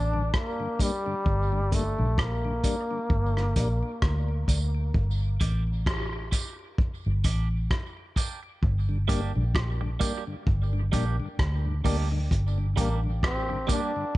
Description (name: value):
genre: dub reggae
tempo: 65 BPM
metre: 4/4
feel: swing 58% on 16ths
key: G minor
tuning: A4 = 440 Hz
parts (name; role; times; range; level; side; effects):
- bright trombone; melody; 0.0-4.5, 12.8-14.1 s; G3 to D4; -31 LUFS; left 1 dB; dub echo
- vintage muted fingered electric bass; bass; 0.0-13.7 s; G1 to D2; -26 LUFS; equal; none
- mellow tonewheel organ; accompaniment; 0.1-14.0 s; G2 to D4; -36 LUFS; left 4 dB; slow rotary speaker, high-pass filter, dub echo
- vintage drum kit; drums; 0.3-14.2 s; hi-hat, kick drum, rim click; -27 LUFS; equal; none
- tambourine and woodblock; percussion; 0.8-13.9 s; none; -41 LUFS; right 5 dB; high-pass filter on perc, dub echo
- clean electric guitar; accompaniment; 5.4-13.9 s; G3 to G4; -36 LUFS; right 6 dB; phaser, high-pass filter, dub echo
room: light reverb, studio reverb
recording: nothing above 10.4 kHz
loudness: -24 LUFS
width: side -18 dB against mid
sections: 0.0-14.2 A section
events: break 0.0-4.9; filter sweep 1.3-8.6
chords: 0.0 Gm